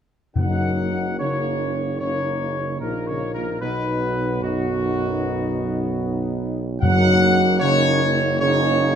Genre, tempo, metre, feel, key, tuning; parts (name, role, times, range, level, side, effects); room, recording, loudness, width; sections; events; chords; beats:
classical, ceremonial fanfare; 75 BPM; 4/4; straight; F# major; A4 = 440 Hz
mellow trumpet section; melody; 0.4-9.0 s; F#4 to F#5; -23 LUFS; left 1 dB
dark trombone section; sustained chords; 0.4-9.0 s; F#2 to F#3; -24 LUFS; right 2 dB
mellow French horn section; sustained chords; 0.4-9.0 s; A#3 to D#4; -28 LUFS; left 4 dB
warm tuba; bass; 0.4-9.0 s; F#1 to B1; -26 LUFS; right 3 dB
timpani; percussion; 0.4-1.6, 6.8-8.0 s; F#2; -24 LUFS; left 3 dB
moderate scoring stage reverb, RT60 2.1 s; -19 LUFS; side -8 dB against mid
0.4-9.0 A section
0.4 F#6; 3.6 B; 6.8 F#6
| 0.36 1.19 2.00 2.81 | 3.62 4.44 5.24 6.04 | 6.83 7.63 8.42